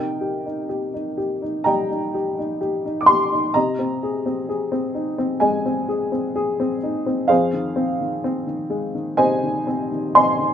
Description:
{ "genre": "classical, lyrical solo piano", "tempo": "64 BPM", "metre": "4/4", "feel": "rubato", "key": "C minor", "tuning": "A4 = 440 Hz", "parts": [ { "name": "dark upright piano", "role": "solo", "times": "0.0-10.5 s", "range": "F2 to D6", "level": "-19 LUFS", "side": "equal", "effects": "none" } ], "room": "light reverb", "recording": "none", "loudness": "-19 LUFS", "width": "side -9 dB against mid", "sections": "0.0-10.5 A section", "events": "none", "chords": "0.0 Cm7; 3.6 Abadd9/C; 7.3 Fm7", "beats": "0.70 1.66 2.61 | 3.55 4.49 5.42 6.35 | 7.29 8.23 9.19 10.15" }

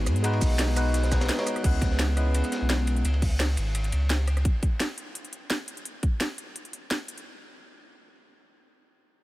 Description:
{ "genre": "liquid drum and bass", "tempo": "171 BPM", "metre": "4/4", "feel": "swing 53% on 16ths", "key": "C# minor", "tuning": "A4 = 441 Hz", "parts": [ { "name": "tine electric piano", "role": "accompaniment", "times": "0.0-3.1 s", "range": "G#3 to C#5", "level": "-30 LUFS", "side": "left 1 dB", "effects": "phaser, tape echo" }, { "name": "warm sub bass", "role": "bass", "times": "0.0-4.4 s", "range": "G#1 to G#2", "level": "-25 LUFS", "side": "equal", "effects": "none" }, { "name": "crunchy breakbeat drum kit", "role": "drums", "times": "0.1-4.4 s", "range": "hi-hat, ride cymbal, snare drum", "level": "-36 LUFS", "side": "equal", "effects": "high-pass filter on cymbals, high-pass filter on hats, high-pass filter on snare, high-pass filter on room" }, { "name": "drum and bass drum kit", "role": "drums", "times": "0.1-7.2 s", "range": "crash cymbal, hi-hat, rim click, shaker, snare drum", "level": "-32 LUFS", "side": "equal", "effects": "none" }, { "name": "electronic kick drum", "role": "drums", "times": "0.4-6.1 s", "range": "none", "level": "-24 LUFS", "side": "equal", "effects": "none" } ], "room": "little or no reverb", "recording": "none", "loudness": "-23 LUFS", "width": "side -17 dB against mid", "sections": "0.0-1.6 A section; 1.6-7.3 B section; 7.3-9.2 C section", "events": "drop 0.0-1.6; break 1.3-1.6", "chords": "0.0 G#m7; 1.6 C#m7; 4.5 N.C.", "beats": "| 0.24 0.59 0.94 1.29 | 1.64 1.99 2.35 2.70 | 3.05 3.40 3.75 4.10 | 4.45 4.80 5.15 5.50 | 5.85 6.21 6.56 6.91" }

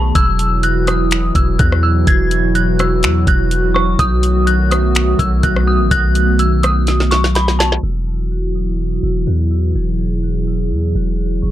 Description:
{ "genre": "hip hop, atmospheric cloud-rap", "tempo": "125 BPM", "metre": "4/4", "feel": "half-time", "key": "E major", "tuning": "A4 = 440 Hz", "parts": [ { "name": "dark detuned synth bell", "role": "melody", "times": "0.0-11.5 s", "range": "A5 to G#6", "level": "-19 LUFS", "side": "equal", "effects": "chorus, low-pass filter, analog delay" }, { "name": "dark analog pad", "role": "sustained chords", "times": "0.0-11.5 s", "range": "B2 to G#4", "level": "-19 LUFS", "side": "equal", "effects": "chorus, sidechain pumping" }, { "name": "long sustained 808-style bass", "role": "bass", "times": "0.0-11.5 s", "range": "E1 to E2", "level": "-16 LUFS", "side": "equal", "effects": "none" }, { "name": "smooth R&B drum kit", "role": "drums", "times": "0.2-7.8 s", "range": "finger snaps, hi-hat, kick drum, rim click, snare drum", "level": "-17 LUFS", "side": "equal", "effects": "none" } ], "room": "little or no reverb", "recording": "dry, gritty hardware recording, transformer saturation, low-pass filter", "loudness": "-13 LUFS", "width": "side -13 dB against mid", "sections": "0.0-7.8 A section; 7.8-11.5 B section", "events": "drum fill 6.9-7.8; filter sweep 7.8-11.5", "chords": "0.2 Esus2; 4.0 B7; 7.8 Esus2", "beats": "| 0.15 0.63 1.11 1.59 | 2.07 2.55 3.03 3.51 | 3.99 4.47 4.95 5.43 | 5.91 6.39 6.87 7.35 | 7.83 8.31 8.79 9.27 | 9.75 10.23 10.71 11.19" }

